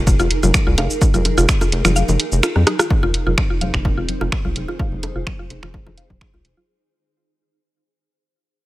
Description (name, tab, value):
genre	minimal techno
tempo	127 BPM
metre	4/4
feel	straight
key	F minor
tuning	A4 = 439 Hz
part	mallet-like synth pluck	riff	0.0-6.6 s	Eb4 to F5	-24 LUFS	equal	chorus, sidechain pumping, dub echo
part	rubbery square bass	bass	0.0-6.5 s	F1 to F2	-19 LUFS	equal	sidechain pumping
part	granular cloud pad	texture	0.0-6.7 s	Eb4 to C5	-28 LUFS	right 2 dB	built-in reverb, sidechain pumping
part	electronic kick drum	drums	0.1-6.3 s	none	-19 LUFS	equal	none
part	punchy analog drum machine	drums	0.1-6.5 s	finger snaps, hi-hat, rim click, shaker	-21 LUFS	right 1 dB	none
part	bongos and congas	percussion	0.4-6.7 s	none	-26 LUFS	left 3 dB	digital delay
part	pulsing gated texture	texture	3.5-6.7 s	C4 to C5	-37 LUFS	left 1 dB	chorus, built-in reverb, sidechain pumping
room	digital ambience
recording	none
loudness	-15 LUFS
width	side -17 dB against mid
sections	0.0-2.9 A section; 2.9-6.7 B section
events	drop 0.0-2.9; kick drops out 2.0-2.9; drum fill 2.5-2.9; fade-out 2.9-6.7; filter sweep on analog synth bass 2.9-6.7; filter sweep on synth arpeggio sound 2.9-6.7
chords	0.0 Fm